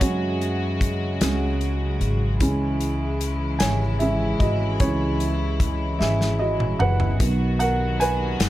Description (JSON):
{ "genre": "six-eight pop ballad", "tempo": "50 BPM (dotted quarters)", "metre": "6/8", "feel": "straight", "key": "unclear", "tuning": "A4 = 439 Hz", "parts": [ { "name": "dark upright piano", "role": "accompaniment", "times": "0.0-8.5 s", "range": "D#3 to G#5", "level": "-25 LUFS", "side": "right 2 dB", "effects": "none" }, { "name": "warm studio string section", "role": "sustained chords", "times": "0.0-8.5 s", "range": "C#3 to F#4", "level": "-28 LUFS", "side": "left 1 dB", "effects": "none" }, { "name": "upright bass", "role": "bass", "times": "0.0-8.5 s", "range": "F#1 to F#2", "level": "-25 LUFS", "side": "equal", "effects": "none" }, { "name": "natural country drum kit", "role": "drums", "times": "0.0-8.5 s", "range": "hi-hat, kick drum, snare drum, toms", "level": "-24 LUFS", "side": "equal", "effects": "none" } ], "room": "small room ambience", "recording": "none", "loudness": "-20 LUFS", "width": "side -14 dB against mid", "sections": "0.0-8.5 A section", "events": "upright piano solo 0.0-8.5; drum fill 6.0-7.2", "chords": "0.0 F#sus2; 2.4 C#m; 7.2 B" }